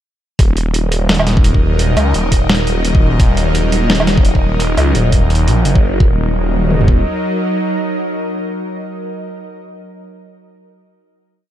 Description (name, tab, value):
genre	half-time drum and bass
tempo	171 BPM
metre	4/4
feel	swing 58% on 16ths, half-time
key	Eb minor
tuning	A4 = 441 Hz
part	bowed-like drone	sustained chords	0.8-9.2 s	Gb3 to Eb5	-20 LUFS	equal	built-in reverb, sidechain pumping
part	phased detuned saw bass	bass	0.4-7.0 s	Eb1 to Db2	-14 LUFS	equal	phaser
part	boom bap sampler-style drum kit	drums	0.4-5.7 s	hi-hat, snare drum, woodblock	-17 LUFS	equal	overdrive, small room reverb
part	drum and bass drum kit	drums	0.4-7.0 s	kick drum, toms	-12 LUFS	equal	small room reverb
room	digital ambience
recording	dark, warm production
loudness	-12 LUFS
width	side -11 dB against mid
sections	0.4-6.0 drop; 6.0-8.8 final chord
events	drop 0.4-6.0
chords	0.4 Ebm